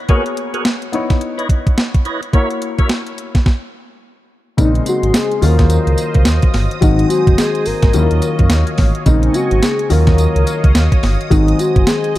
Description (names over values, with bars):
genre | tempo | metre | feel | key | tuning
R&B, new jack swing | 107 BPM | 4/4 | swing 60% on 16ths | C# dorian, Eb dorian from 4.6 s | A4 = 440 Hz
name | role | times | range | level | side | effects
warm grand piano | accompaniment | 0.0-12.2 s | Db3 to C#5 | -20 LUFS | left 4 dB | none
percussive tonewheel organ | stabs | 0.1-2.9 s | E4 to E5 | -24 LUFS | right 1 dB | overdrive, chorus vibrato, slow rotary speaker, ping-pong delay
clean 12-bit digital drum machine | drums | 0.1-12.2 s | hi-hat, kick drum, snare drum, tambourine | -14 LUFS | equal | overdrive
soft octave-layered synth lead | melody | 4.6-12.2 s | Eb4 to Bb4 | -18 LUFS | left 1 dB | chorus, tremolo
sweeping resonant pad | sustained chords | 4.6-12.2 s | C4 to Eb6 | -25 LUFS | right 1 dB | chorus
smooth gliding synth bass | bass | 4.6-12.2 s | Gb1 to Gb2 | -15 LUFS | equal | none
room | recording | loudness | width
digital ambience | dark, warm production | -12 LUFS | side -15 dB against mid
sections
0.0-4.6 A section; 4.6-12.2 B section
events
stop 3.5-4.6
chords
0.1 G#m11; 0.9 C#m9; 2.3 F#7; 3.5 N.C.; 4.6 Bbm11; 5.4 Ebm9; 6.8 Ab7; 7.9 Ebm9; 9.1 Bbm11; 9.9 Ebm9; 11.3 Ab7